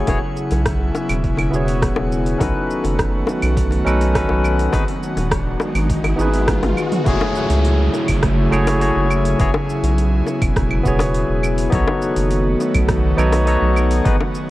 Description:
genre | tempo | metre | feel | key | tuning
sunset chillout | 103 BPM | 4/4 | straight | unclear | A4 = 441 Hz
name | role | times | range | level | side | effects
barky tine electric piano | accompaniment | 0.0-14.2 s | A3 to C#5 | -21 LUFS | moving between left 4 dB and right 2 dB | auto-pan, digital delay, shimmer reverb
airy breathy pad | sustained chords | 0.0-14.5 s | C#3 to G#5 | -23 LUFS | equal | chorus, shimmer reverb
round analog bass | bass | 0.0-14.2 s | D#1 to C#2 | -19 LUFS | equal | none
drifting glass-harmonics texture | texture | 0.0-7.1 s | F#5 | -39 LUFS | right 2 dB | none
deep house drum kit | drums | 0.1-14.5 s | claves, hi-hat, rim click, shaker, toms | -26 LUFS | right 1 dB | overdrive
electronic kick drum | drums | 0.1-14.2 s | none | -22 LUFS | equal | overdrive
bongos | percussion | 0.1-14.3 s | none | -26 LUFS | left 3 dB | none
riser and downlifter | sound effects | 4.2-11.7 s | none | -29 LUFS | equal | none
room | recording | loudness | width
light reverb, digital ambience | worn, warbling old tape, cassette tape, warbly pitch drift | -15 LUFS | side -16 dB against mid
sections
0.0-7.1 A section; 7.1-14.5 B section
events
riser 4.2-7.1; drum fill 6.2-7.1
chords
0.1 E69; 2.4 B7; 4.7 G#m7; 7.1 F#m9; 9.4 E69; 11.7 B7

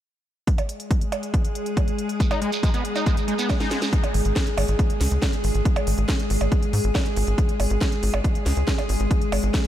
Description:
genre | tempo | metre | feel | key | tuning
psychedelic trance | 139 BPM | 4/4 | straight | unclear | A4 = 440 Hz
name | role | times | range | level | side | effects
evolving wavetable pad | sustained chords | 0.7-9.7 s | G#3 to G#4 | -28 LUFS | left 1 dB | chorus, built-in reverb, sidechain pumping
electronic kick drum | drums | 0.5-9.6 s | none | -22 LUFS | equal | overdrive, small room reverb
techno drum kit | drums | 0.5-9.7 s | hi-hat, percussion blips, snare drum | -29 LUFS | right 2 dB | overdrive, small room reverb
shekere | percussion | 2.2-3.9 s | none | -35 LUFS | right 5 dB | none
screaming distorted acid line | riff | 2.3-3.8 s | G#3 to D#4 | -31 LUFS | left 1 dB | distortion, chorus, auto-pan, sidechain pumping, diffuse ambient delay
tight sequencer bass | bass | 4.1-9.5 s | G#1 to G#2 | -22 LUFS | equal | none
room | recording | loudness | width
light reverb, digital ambience | none | -20 LUFS | side -12 dB against mid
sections
0.5-3.9 A section; 3.9-9.7 B section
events
drum fill 3.5-3.9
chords
0.5 G#5

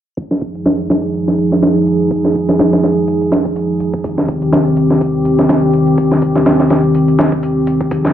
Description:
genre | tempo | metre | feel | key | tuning
breakbeat, breaks | 124 BPM | 4/4 | swing 56% on 16ths | F minor | A4 = 440 Hz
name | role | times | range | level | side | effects
dark analog pad | sustained chords | 0.2-8.1 s | Eb3 to Ab4 | -13 LUFS | equal | chorus, vintage 12-bit sampler grit, sidechain pumping
dusty soul sampler-style drum kit | drums | 0.2-8.1 s | hi-hat, kick drum, snare drum | -16 LUFS | right 1 dB | high-pass filter on hats, studio reverb, high-pass filter on kick, high-pass filter on snare
electronic hi-hat | drums | 0.2-8.0 s | none | -48 LUFS | right 2 dB | none
room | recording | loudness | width
light reverb, digital ambience | low-pass filter | -11 LUFS | side -10 dB against mid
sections
0.2-8.1 A section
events
filter sweep 0.2-8.1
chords
0.2 Fm7; 4.0 Eb6

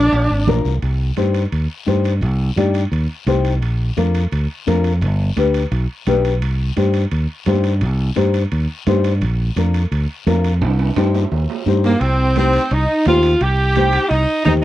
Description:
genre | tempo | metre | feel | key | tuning
latin, cumbia | 172 BPM | 4/4 | straight | C minor | A4 = 440 Hz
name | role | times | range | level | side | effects
bright saxophone section | melody | 0.0-0.6, 11.8-14.6 s | Bb3 to G4 | -16 LUFS | right 1 dB | cassette tape
nylon-string guitar | accompaniment | 0.0-14.6 s | D4 to D5 | -20 LUFS | left 6 dB | cassette tape
fingered electric bass | bass | 0.0-14.6 s | G1 to G2 | -17 LUFS | equal | none
congas | percussion | 0.1-14.6 s | none | -25 LUFS | right 7 dB | none
cowbell and timbales | percussion | 0.1-14.6 s | none | -30 LUFS | right 8 dB | none
guiro | percussion | 0.1-14.6 s | none | -37 LUFS | left 9 dB | none
room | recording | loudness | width
moderate booth ambience, RT60 0.2 s | home recording on cassette | -15 LUFS | side -14 dB against mid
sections
0.8-12.0 A section; 12.0-14.6 B section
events
drum fill 10.6-12.0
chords
0.0 Bb; 0.8 Cm; 3.6 Bb; 5.0 G; 6.4 Cm; 9.2 Bb; 10.6 Cm

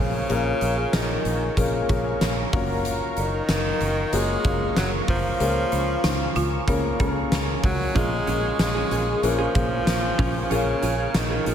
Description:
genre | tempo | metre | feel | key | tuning
1980s-style pop | 94 BPM | 4/4 | straight | Bb minor | A4 = 440 Hz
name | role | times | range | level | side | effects
bright tenor saxophone | melody | 0.0-11.5 s | Db3 to Ab3 | -26 LUFS | equal | slapback echo
warm concert grand piano | accompaniment | 0.0-11.5 s | Bb3 to Db5 | -28 LUFS | left 4 dB | slapback echo
warm analog pad | sustained chords | 0.0-11.5 s | Bb4 to Db6 | -33 LUFS | equal | chorus
fingered electric bass | bass | 0.0-11.5 s | Gb1 to Db2 | -27 LUFS | equal | none
huge arena drum kit | drums | 0.3-11.5 s | hi-hat, kick drum, snare drum, tambourine | -26 LUFS | equal | none
folk marimba with hard mallets | second line | 5.7-7.4 s | Db4 to F4 | -31 LUFS | right 1 dB | tape echo, slapback echo
direct-recorded clean electric guitar | riff | 7.9-11.5 s | Db4 to Ab4 | -31 LUFS | right 5 dB | lush chorus, slapback echo
room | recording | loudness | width
moderate lush hall reverb, RT60 2.9 s | big arena sound | -20 LUFS | side -9 dB against mid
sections
0.0-11.5 A section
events
none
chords
0.0 Bbm7; 2.5 Gbmaj7; 5.4 Db6; 8.0 Bbm7

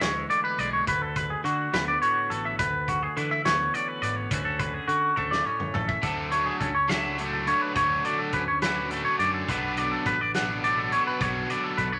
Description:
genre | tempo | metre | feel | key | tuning
math rock and midwest emo | 70 BPM (dotted quarters) | 6/8 | straight | D lydian | A4 = 444 Hz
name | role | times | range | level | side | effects
twelve-string electric guitar | accompaniment | 0.0-12.0 s | D2 to F#4 | -37 LUFS | equal | none
twangy electric guitar | arpeggios | 0.0-12.0 s | F#4 to F#5 | -28 LUFS | equal | spring reverb
modern bright picked electric bass | bass | 0.0-12.0 s | G#1 to D3 | -38 LUFS | equal | none
loose indie drum kit | drums | 0.0-11.9 s | hi-hat, kick drum, snare drum, toms | -36 LUFS | equal | none
crunchy overdriven guitar | riff | 6.0-11.9 s | B2 to D4 | -33 LUFS | equal | none
room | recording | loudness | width
moderate studio ambience, RT60 0.5 s | none | -26 LUFS | mono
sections
0.0-6.0 A section; 6.0-12.0 B section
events
drum fill 5.2-6.0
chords
0.0 E7/D; 0.9 D6; 2.6 C#m7/D; 4.3 Dmaj7; 9.5 Bm7

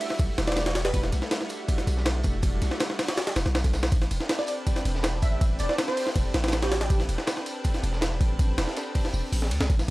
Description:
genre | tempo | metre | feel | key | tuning
drum and bass, jungle | 161 BPM | 4/4 | straight | A minor | A4 = 440 Hz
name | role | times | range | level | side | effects
plucky unison lead | melody | 0.0-1.0, 4.4-7.0 s | G4 to E5 | -32 LUFS | right 1 dB | wide subtle chorus, cassette tape, dub echo
lush unison pad | sustained chords | 0.0-9.9 s | G3 to B4 | -35 LUFS | equal | chorus, vintage 12-bit sampler grit
crunchy breakbeat drum kit | drums | 0.0-9.9 s | hi-hat, snare drum, tambourine | -39 LUFS | right 2 dB | high-pass filter on hats, small room reverb, high-pass filter on snare, high-pass filter on perc, high-pass filter on room
jungle sampler-style drum kit | drums | 0.0-9.9 s | hi-hat, kick drum, ride cymbal, snare drum | -26 LUFS | equal | overdrive, small room reverb
long sustained 808-style bass | bass | 0.2-9.9 s | E1 to D2 | -27 LUFS | equal | tube saturation
room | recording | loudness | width
studio ambience | dry, gritty hardware recording | -24 LUFS | side -19 dB against mid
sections
0.0-3.9 A section; 3.9-9.9 A section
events
drop 0.0-3.9, 3.9-9.9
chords
0.0 Em11; 3.9 Am11

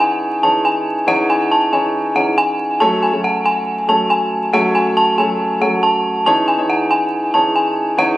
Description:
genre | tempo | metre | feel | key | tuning
hip hop | 139 BPM | 4/4 | half-time | C# minor | A4 = 440 Hz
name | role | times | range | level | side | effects
dark detuned synth bell | melody | 0.0-8.2 s | F#5 to A5 | -15 LUFS | equal | chorus
warm concert grand piano | accompaniment | 0.0-8.2 s | E3 to C#5 | -18 LUFS | equal | none
room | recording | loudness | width
small room ambience | recorded on a phone in the room, club reverb, vinyl crackle | -13 LUFS | side -16 dB against mid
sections
0.0-8.2 A section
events
none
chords
0.0 C#madd9; 2.8 F#m; 6.3 C#madd9

